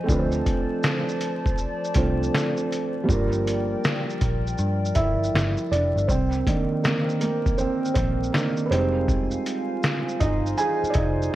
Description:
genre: lo-fi hip hop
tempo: 80 BPM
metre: 4/4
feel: swing 65% on 16ths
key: C minor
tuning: A4 = 439 Hz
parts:
  - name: felt-muted upright piano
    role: accompaniment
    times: 0.0-11.3 s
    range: Eb3 to Ab5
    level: -25 LUFS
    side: right 2 dB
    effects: cassette tape, low-pass filter
  - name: warbly tape-like pad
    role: sustained chords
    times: 0.0-11.3 s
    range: Eb3 to A5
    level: -31 LUFS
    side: left 1 dB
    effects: chorus, built-in reverb, low-pass filter
  - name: vintage muted picked electric bass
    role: bass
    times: 0.1-11.3 s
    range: F1 to G2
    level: -26 LUFS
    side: equal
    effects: none
  - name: trip hop sampler-style drum kit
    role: drums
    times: 0.1-11.3 s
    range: finger snaps, hi-hat, kick drum, shaker, snare drum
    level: -25 LUFS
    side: equal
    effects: none
room: light reverb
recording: vinyl crackle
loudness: -21 LUFS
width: side -14 dB against mid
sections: 0.0-6.1 A section; 6.1-11.3 A section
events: felt piano solo 6.1-11.3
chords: 0.1 Dm7; 3.1 Gm7; 6.1 Cm7; 8.7 Fm7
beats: | 0.09 0.83 1.58 2.33 | 3.08 3.83 4.58 5.33 | 6.08 6.83 7.58 8.34 | 9.09 9.84 10.59 11.34

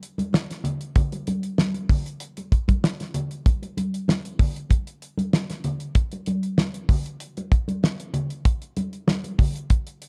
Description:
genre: funk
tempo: 96 BPM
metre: 4/4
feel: straight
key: none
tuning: none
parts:
  - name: damped 70s drum kit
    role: drums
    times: 0.0-10.1 s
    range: hi-hat, kick drum, snare drum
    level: -23 LUFS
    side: equal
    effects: none
  - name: congas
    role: percussion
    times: 0.2-9.5 s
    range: none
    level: -31 LUFS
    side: equal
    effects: none
room: little or no reverb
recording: dark, warm production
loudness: -24 LUFS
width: mono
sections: 0.0-10.1 A section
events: none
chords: none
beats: 0.33 | 0.96 1.58 2.21 2.83 | 3.46 4.08 4.71 5.33 | 5.96 6.58 7.21 7.83 | 8.45 9.08 9.70

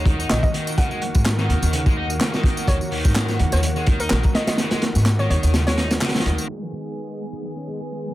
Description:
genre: breakbeat, breaks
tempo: 126 BPM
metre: 4/4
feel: swing 55% on 16ths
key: unclear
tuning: A4 = 440 Hz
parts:
  - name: lush unison pad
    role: sustained chords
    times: 0.0-8.1 s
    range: D#3 to G#4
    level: -29 LUFS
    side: equal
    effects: chorus, sidechain pumping
  - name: thick fuzz guitar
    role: riff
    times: 0.0-8.0 s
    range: C#3 to G#4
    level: -29 LUFS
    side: equal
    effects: distortion, overdrive, low-pass filter, tape echo
  - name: upright bass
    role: bass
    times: 0.0-6.4 s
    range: A#1 to G#2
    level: -21 LUFS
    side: equal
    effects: none
  - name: crunchy breakbeat drum kit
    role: drums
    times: 0.1-6.4 s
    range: hi-hat, kick drum, snare drum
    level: -21 LUFS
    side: equal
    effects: tape echo
  - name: electronic tambourine and handclaps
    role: drums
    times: 0.2-8.1 s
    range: none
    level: -30 LUFS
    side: equal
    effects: low-pass filter on perc, low-pass filter on snare
  - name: hollow square pluck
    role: melody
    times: 0.3-6.0 s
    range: A#4 to F#5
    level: -29 LUFS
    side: equal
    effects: chorus, old record sound, tape echo
room: light reverb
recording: echo-heavy mix, low-pass filter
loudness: -18 LUFS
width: side -16 dB against mid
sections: 0.0-6.5 A section; 6.5-8.1 B section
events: kick drops out 5.5-6.5; filter sweep 6.5-8.1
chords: 0.0 D#m; 6.5 G#m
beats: 0.30 | 0.78 1.25 1.73 2.20 | 2.68 3.16 3.63 4.11 | 4.58 5.06 5.54 6.01 | 6.49 6.96 7.44 7.92

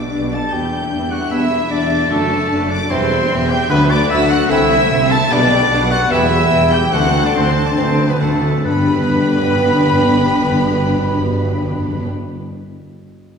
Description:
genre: classical, dramatic, fast romantic movement for symphony orchestra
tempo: 133-154 BPM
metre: 4/4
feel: rubato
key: G major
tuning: A4 = 439 Hz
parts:
  - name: rich symphonic violin section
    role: melody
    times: 0.0-12.1 s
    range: A5 to A6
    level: -26 LUFS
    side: left 1 dB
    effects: none
  - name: clear clarinet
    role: second line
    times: 0.0-12.1 s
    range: A4 to A5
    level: -25 LUFS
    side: left 1 dB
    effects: none
  - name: mellow cor anglais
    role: second line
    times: 0.0-12.1 s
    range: A3 to B4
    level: -24 LUFS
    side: right 2 dB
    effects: none
  - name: silver concert flute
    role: second line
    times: 0.0-12.0 s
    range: A4 to B5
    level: -24 LUFS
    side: left 1 dB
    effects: none
  - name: warm studio violin section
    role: second line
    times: 0.0-12.1 s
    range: D4 to A5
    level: -27 LUFS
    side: left 2 dB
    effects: none
  - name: warm symphonic viola section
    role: accompaniment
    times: 0.0-12.1 s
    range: D3 to B4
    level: -23 LUFS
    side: right 1 dB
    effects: none
  - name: concert harp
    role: arpeggios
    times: 0.0-12.6 s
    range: E2 to D5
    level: -23 LUFS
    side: left 5 dB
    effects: none
  - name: mellow trumpet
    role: stabs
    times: 0.0-12.1 s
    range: A4 to A5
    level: -22 LUFS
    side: left 1 dB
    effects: none
  - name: rich symphonic double bass section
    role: bass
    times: 0.0-12.1 s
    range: E1 to D2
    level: -24 LUFS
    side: right 3 dB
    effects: none
  - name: warm chamber cello section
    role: bass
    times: 0.0-12.1 s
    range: D2 to C3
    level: -23 LUFS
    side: right 2 dB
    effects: none
  - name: clear French horn section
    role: sustained chords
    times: 0.5-12.1 s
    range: B3 to B4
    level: -25 LUFS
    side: left 2 dB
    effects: none
  - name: warm trombone section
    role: sustained chords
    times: 0.5-12.1 s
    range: B2 to B3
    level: -24 LUFS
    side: right 1 dB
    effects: none
  - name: timpani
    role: percussion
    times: 3.7-4.3, 6.9-12.1 s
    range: G2 to D3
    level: -22 LUFS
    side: left 1 dB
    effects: none
room: wet scoring stage reverb, RT60 1.8 s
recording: small room ambience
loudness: -13 LUFS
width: side -6 dB against mid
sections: 0.0-8.6 A section; 8.6-12.2 B section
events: slowing down 4.5-8.6; timpani fill 6.9-8.6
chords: 0.0 G/B; 0.5 Em7; 2.1 D/F#; 2.9 C/E; 3.7 Bm/D; 4.5 Am/C; 5.3 G/B; 6.1 Em; 6.9 Dsus2; 8.6 G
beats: 0.13 | 0.53 0.92 1.31 1.71 | 2.10 2.50 2.90 3.30 | 3.70 4.10 4.50 4.91 | 5.31 5.71 6.11 6.52 | 6.93 7.35 7.77 8.20 | 8.64 9.09 9.52 9.96 | 10.40 10.84 11.29 11.73

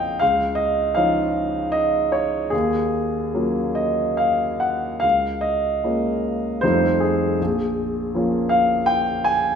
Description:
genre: classical, impressionist solo piano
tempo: 70-82 BPM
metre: 3/4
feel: rubato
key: Db major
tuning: A4 = 441 Hz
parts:
  - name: clear concert grand piano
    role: solo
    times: 0.0-9.6 s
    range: Bb1 to Ab5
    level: -18 LUFS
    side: equal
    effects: none
room: wet recital hall reverb, RT60 1.4 s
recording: minimal, uncompressed stereo recording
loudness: -18 LUFS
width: side -7 dB against mid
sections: 0.0-9.6 A section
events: none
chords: 0.2 Dbadd9; 2.5 Ebm11; 5.0 Db69; 6.6 F9; 7.4 Bbm7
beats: | 0.21 0.96 1.75 | 2.53 3.34 4.19 | 5.04 5.84 6.63 | 7.39 8.14 8.88

